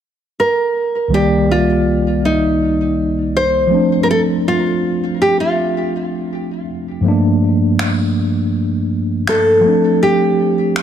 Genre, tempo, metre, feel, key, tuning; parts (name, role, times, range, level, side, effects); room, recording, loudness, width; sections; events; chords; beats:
contemporary R&B; 81 BPM; 4/4; straight; C dorian; A4 = 444 Hz
nylon-string guitar; melody; 0.4-10.8 s; Eb4 to C5; -15 LUFS; equal; tape echo
mellow tine electric piano; accompaniment; 1.1-10.8 s; C2 to D5; -16 LUFS; equal; fast stereo tremolo
electronic finger snaps; drums; 7.8-10.8 s; -24 LUFS; equal
light reverb, digital ambience; -13 LUFS; side -9 dB against mid
0.0-1.1 A section; 1.1-10.8 B section
kick muted 10.0-10.8
0.0 N.C.; 1.1 Cm7; 3.7 Dm7; 7.0 Gm9; 9.6 Dm7
0.38 | 1.12 1.86 2.60 3.34 | 4.08 4.82 5.56 6.30 | 7.04 7.79 8.53 9.27 | 10.01 10.75